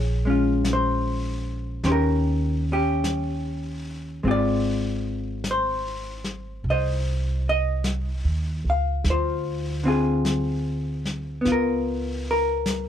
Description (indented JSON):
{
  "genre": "jazz ballad",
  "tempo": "50 BPM",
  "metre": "4/4",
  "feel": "swing 67% on 8ths",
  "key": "unclear",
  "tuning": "A4 = 440 Hz",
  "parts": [
    { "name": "vintage hollow-body jazz guitar", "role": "accompaniment", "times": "0.0-12.9 s", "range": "D3 to F5", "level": "-24 LUFS", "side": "left 2 dB", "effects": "none" },
    { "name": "upright bass", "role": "bass", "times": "0.0-12.9 s", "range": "Ab1 to Eb2", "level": "-26 LUFS", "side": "right 1 dB", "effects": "none" },
    { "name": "vintage brush drum kit", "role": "drums", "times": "0.6-12.9 s", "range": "brushed snare drum, hi-hat, snare drum", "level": "-34 LUFS", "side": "left 2 dB", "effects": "none" }
  ],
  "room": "moderate booth ambience, RT60 0.2 s",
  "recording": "dark, warm production",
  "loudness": "-22 LUFS",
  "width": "side -10 dB against mid",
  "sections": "0.0-12.9 A section",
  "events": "none",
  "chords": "0.0 Bbm7; 1.9 Eb; 4.2 Ab6; 9.0 Dm7b5; 11.5 Db13",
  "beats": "0.65 1.85 3.05 | 4.25 5.44 6.64 7.84 | 9.05 10.25 11.46 12.67"
}